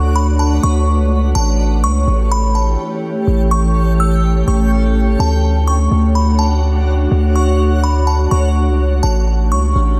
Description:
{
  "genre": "hip hop",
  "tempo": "125 BPM",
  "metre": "4/4",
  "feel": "half-time",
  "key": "D major",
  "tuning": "A4 = 440 Hz",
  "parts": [
    { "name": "delicate synth tine bell", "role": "melody", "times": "0.0-10.0 s", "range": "A5 to E6", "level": "-24 LUFS", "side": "equal", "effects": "chorus, phaser, delay" },
    { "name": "glassy FM pad", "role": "sustained chords", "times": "0.0-10.0 s", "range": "E3 to C#5", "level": "-21 LUFS", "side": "equal", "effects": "ensemble chorus, built-in reverb" },
    { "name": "long sustained 808-style bass", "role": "bass", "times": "0.0-10.0 s", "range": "A1 to D2", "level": "-16 LUFS", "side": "equal", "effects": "none" },
    { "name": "backwards swelling texture", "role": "texture", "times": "0.0-10.0 s", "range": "C#4 to G5", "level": "-31 LUFS", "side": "equal", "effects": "built-in reverb" }
  ],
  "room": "moderate church reverb, RT60 2.7 s",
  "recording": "dreamy mix soaked in reverb",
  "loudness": "-15 LUFS",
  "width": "mono",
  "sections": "0.0-10.0 A section",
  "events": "none",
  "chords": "0.0 Dmaj7; 1.4 A7; 5.2 Dmaj7; 9.0 A7"
}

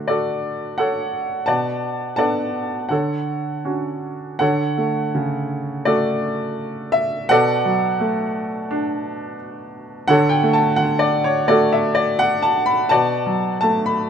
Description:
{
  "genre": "classical, lyrical solo piano",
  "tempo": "84 BPM",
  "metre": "4/4",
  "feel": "rubato",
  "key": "D major",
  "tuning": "A4 = 443 Hz",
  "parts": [
    { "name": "bright upright piano", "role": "solo", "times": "0.0-14.1 s", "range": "B2 to B5", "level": "-18 LUFS", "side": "equal", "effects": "none" }
  ],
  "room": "light reverb",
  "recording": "close, detailed microphones",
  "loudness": "-17 LUFS",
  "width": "side -8 dB against mid",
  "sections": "0.0-4.4 A section; 4.4-14.1 A section",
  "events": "none",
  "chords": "0.0 Dmaj7; 1.5 Bm7; 2.9 Dmaj7; 7.3 Bm7; 10.1 Dmaj7; 12.9 Bm7"
}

